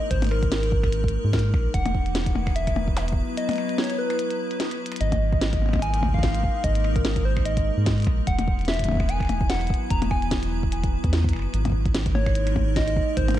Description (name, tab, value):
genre	IDM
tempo	147 BPM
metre	4/4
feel	swing 56% on 16ths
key	unclear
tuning	A4 = 440 Hz
part	soft struck synth lead	melody	0.0-13.4 s	Bb4 to Bb5	-29 LUFS	left 1 dB	chorus, tremolo, digital delay
part	icy glass pad	sustained chords	0.0-13.4 s	F#3 to B4	-31 LUFS	right 1 dB	chorus, built-in reverb, sidechain pumping
part	round analog bass	bass	0.1-13.4 s	E1 to Ab2	-24 LUFS	equal	none
part	electronic kick drum	drums	0.1-13.3 s	none	-26 LUFS	equal	none
part	glitchy drum kit	drums	0.1-13.4 s	finger snaps, hi-hat, percussion blips, snare drum	-29 LUFS	left 2 dB	none
room	light reverb, digital ambience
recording	dark, warm production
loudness	-21 LUFS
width	side -13 dB against mid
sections	0.0-13.4 A section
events	drum fill 4.8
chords	0.0 Absus2; 1.7 Esus2; 5.0 Absus2; 8.3 Esus2; 11.5 Absus2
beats	| 0.11 0.52 0.93 1.33 | 1.74 2.15 2.56 2.96 | 3.37 3.78 4.19 4.60 | 5.01 5.41 5.82 6.23 | 6.64 7.05 7.46 7.86 | 8.27 8.68 9.09 9.50 | 9.90 10.31 10.72 11.13 | 11.54 11.95 12.35 12.76 | 13.17